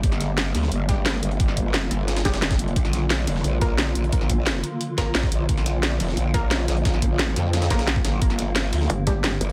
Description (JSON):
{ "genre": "dark technical drum and bass", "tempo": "176 BPM", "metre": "4/4", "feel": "straight", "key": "unclear", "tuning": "A4 = 440 Hz", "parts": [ { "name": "swarming drone", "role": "sustained chords", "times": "0.0-9.5 s", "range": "D3 to G4", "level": "-31 LUFS", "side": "equal", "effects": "built-in reverb, sidechain pumping" }, { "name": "growl bass", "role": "bass", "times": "0.0-9.5 s", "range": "F1 to F2", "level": "-26 LUFS", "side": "equal", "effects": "chorus, tube saturation" }, { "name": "breakbeat sampler-style drum kit", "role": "drums", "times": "0.0-9.5 s", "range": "hi-hat, snare drum", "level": "-36 LUFS", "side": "equal", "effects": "high-pass filter on hats, high-pass filter on snare" }, { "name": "drum and bass drum kit", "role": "drums", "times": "0.0-9.5 s", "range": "hi-hat, snare drum", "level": "-28 LUFS", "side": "equal", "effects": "none" }, { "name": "electronic kick drum", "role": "drums", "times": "0.0-9.1 s", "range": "none", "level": "-25 LUFS", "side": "equal", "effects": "none" }, { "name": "orchestra-hit-like synth stab", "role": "stabs", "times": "0.9-9.2 s", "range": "G3 to Bb4", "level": "-34 LUFS", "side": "equal", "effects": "built-in reverb, delay" }, { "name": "metallic wobble bass", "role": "bass", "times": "8.9-9.4 s", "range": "G1", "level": "-27 LUFS", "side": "equal", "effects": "chorus" } ], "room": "light reverb", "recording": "heavily compressed radio sound", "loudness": "-22 LUFS", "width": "mono", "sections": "0.0-9.5 A section", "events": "none", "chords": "0.0 Gm; 2.8 Bb; 8.2 Gm" }